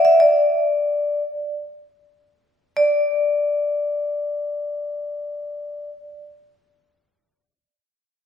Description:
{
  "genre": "mongolian traditional, Mongolian folk",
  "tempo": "free time",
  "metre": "none",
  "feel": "none",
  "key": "unclear",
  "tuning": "A4 = 440 Hz",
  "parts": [
    { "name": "vibraphone with medium hard mallets", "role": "solo", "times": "0.0-5.9 s", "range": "D5 to E5", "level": "-18 LUFS", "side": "left 1 dB", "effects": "none" }
  ],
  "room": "wet recital hall reverb, RT60 1.7 s",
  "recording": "recorded in a church or concert hall",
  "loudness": "-19 LUFS",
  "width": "side -8 dB against mid",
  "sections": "0.0-2.8 A section; 2.8-8.3 B section",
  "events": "slowing down 0.0-2.8",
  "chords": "none"
}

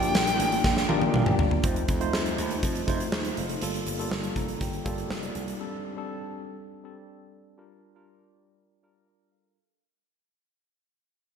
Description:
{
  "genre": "1980s-style pop",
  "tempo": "121 BPM",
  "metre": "4/4",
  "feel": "straight",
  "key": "unclear",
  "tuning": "A4 = 438 Hz",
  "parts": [
    { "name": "smooth overdriven lead guitar", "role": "melody", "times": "0.0-1.3 s", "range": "G5", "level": "-29 LUFS", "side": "left 1 dB", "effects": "ping-pong delay" },
    { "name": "tine electric piano", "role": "accompaniment", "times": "0.0-9.8 s", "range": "G3 to Bb5", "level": "-31 LUFS", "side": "equal", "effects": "slow stereo tremolo" },
    { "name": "gritty slap bass", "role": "bass", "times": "0.0-5.5 s", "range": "F1 to F2", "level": "-33 LUFS", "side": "equal", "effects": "overdrive" },
    { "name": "huge arena drum kit", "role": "drums", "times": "0.0-5.6 s", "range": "hi-hat, kick drum, snare drum, tambourine, toms", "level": "-27 LUFS", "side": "equal", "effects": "gated reverb" }
  ],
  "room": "moderate lush hall reverb, RT60 1.6 s, studio reverb",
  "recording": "bright 1980s-style digital production",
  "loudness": "-25 LUFS",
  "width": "side -7 dB against mid",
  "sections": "0.0-1.6 A section; 1.6-9.6 B section",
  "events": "drum fill 0.6-1.6; tine electric piano fill 0.6-1.6, 4.1-5.6; fade-out 1.6-9.6",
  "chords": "0.0 Bb6; 1.6 F7; 3.6 Gm9; 5.6 D7sus4; 7.6 Bb6"
}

